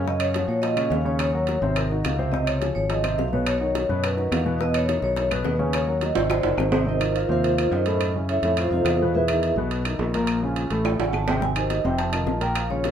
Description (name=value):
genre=Afro-Cuban jazz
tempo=211 BPM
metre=4/4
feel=straight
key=Db major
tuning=A4 = 440 Hz
part: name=vibraphone with medium hard mallets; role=melody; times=0.0-12.9 s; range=Eb4 to A5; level=-25 LUFS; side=equal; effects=none
part: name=warm grand piano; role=accompaniment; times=0.0-12.9 s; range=A2 to Db5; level=-27 LUFS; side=left 1 dB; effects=none
part: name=fingered electric bass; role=bass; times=0.0-12.9 s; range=F1 to Bb2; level=-26 LUFS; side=equal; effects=none
part: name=bongos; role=percussion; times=0.1-6.9, 11.4-12.9 s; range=none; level=-33 LUFS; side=left 4 dB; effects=none
part: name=claves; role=percussion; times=0.2-12.7 s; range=none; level=-36 LUFS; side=left 4 dB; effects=none
part: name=timbales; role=percussion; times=0.2-12.9 s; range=none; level=-30 LUFS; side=right 4 dB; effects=none
room=light reverb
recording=minimal, uncompressed stereo recording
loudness=-21 LUFS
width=side -9 dB against mid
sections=0.0-6.9 A section; 6.9-12.9 B section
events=drum fill 6.2-6.9, 10.9-11.4; vibraphone solo 6.9-12.9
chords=0.1 Gbmaj7; 1.2 Ebm7; 1.8 Ab13; 2.3 Dbmaj9; 3.5 Cbadd9; 4.6 E5; 5.7 Ebm7; 6.3 Ab7; 6.9 Ab69; 8.0 Gbm7; 8.6 F7; 9.1 Emaj7; 10.3 Bbm; 10.9 A; 11.4 Abmaj7; 12.0 F7